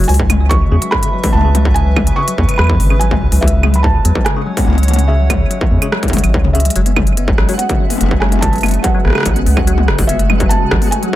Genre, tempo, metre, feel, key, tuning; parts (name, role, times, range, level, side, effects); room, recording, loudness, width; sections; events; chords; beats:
IDM; 144 BPM; 4/4; straight; F# minor; A4 = 441 Hz
hollow soft pad; sustained chords; 0.0-11.2 s; G#3 to F#5; -24 LUFS; left 1 dB; chorus
bell-like tine electric piano; arpeggios; 0.0-11.2 s; G#2 to B3; -22 LUFS; left 5 dB; phaser, dub echo
round analog bass; bass; 0.0-10.8 s; F#1 to E2; -13 LUFS; equal
industrial drum kit; drums; 0.0-11.1 s; claves, hi-hat, rim click, toms; -19 LUFS; left 1 dB; overdrive, tape echo
felt-muted upright piano; melody; 0.1-11.2 s; E5 to C#6; -21 LUFS; right 3 dB; dub echo
electronic kick drum; drums; 0.2-11.2 s; -16 LUFS; equal; distortion, overdrive
twinkling granular texture; texture; 7.4-11.2 s; G#3 to F#4; -26 LUFS; right 1 dB; built-in reverb
digital ambience; echo-heavy mix; -11 LUFS; side -14 dB against mid
0.0-6.8 A section; 6.8-11.2 A section
drum fill 6.5
0.1 C#m7; 6.8 F#m7
| 0.09 0.51 0.92 1.34 | 1.76 2.17 2.59 3.01 | 3.42 3.84 4.26 4.67 | 5.09 5.51 5.92 6.34 | 6.76 7.17 7.59 8.01 | 8.42 8.84 9.26 9.67 | 10.09 10.51 10.92